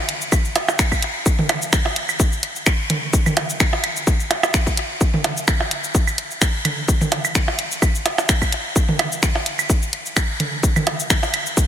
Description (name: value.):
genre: techno.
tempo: 128 BPM.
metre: 4/4.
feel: swing 55% on 16ths.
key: none.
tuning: none.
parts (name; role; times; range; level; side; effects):
house drum kit; drums; 0.1-11.7 s; cabasa, finger snaps, hi-hat; -22 LUFS; left 1 dB; none.
electronic kick drum; drums; 0.3-11.7 s; none; -18 LUFS; equal; none.
electronic claves, percussion blips and toms; percussion; 0.3-11.4 s; none; -23 LUFS; right 3 dB; ping-pong delay.
room: moderate huge ambient reverb, RT60 5.1 s.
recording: dreamy mix soaked in reverb.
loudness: -17 LUFS.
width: side -10 dB against mid.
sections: 0.0-11.7 A section.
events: none.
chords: none.